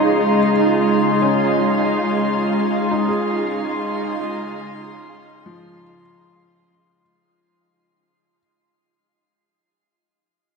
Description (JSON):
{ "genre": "ambient", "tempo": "free time", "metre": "none", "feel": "none", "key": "Db major", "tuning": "A4 = 439 Hz", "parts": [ { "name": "soft additive organ-like pad", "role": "sustained chords", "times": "0.0-7.0 s", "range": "Db3 to F4", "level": "-17 LUFS", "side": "equal", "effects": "ensemble chorus, built-in reverb" }, { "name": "felt-muted upright piano", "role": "arpeggios", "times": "0.0-8.4 s", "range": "F3 to Db5", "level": "-28 LUFS", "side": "right 1 dB", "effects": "diffuse ambient delay" }, { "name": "glass harmonica", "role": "texture", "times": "0.0-7.0 s", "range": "C6", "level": "-28 LUFS", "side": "left 3 dB", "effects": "none" } ], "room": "wet shimmer reverb, RT60 8.6 s", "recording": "nothing above 10.4 kHz", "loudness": "-16 LUFS", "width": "side -4 dB against mid", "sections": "0.0-7.0 A section", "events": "fade-out 0.2-7.0", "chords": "0.0 Dbadd9", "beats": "free time" }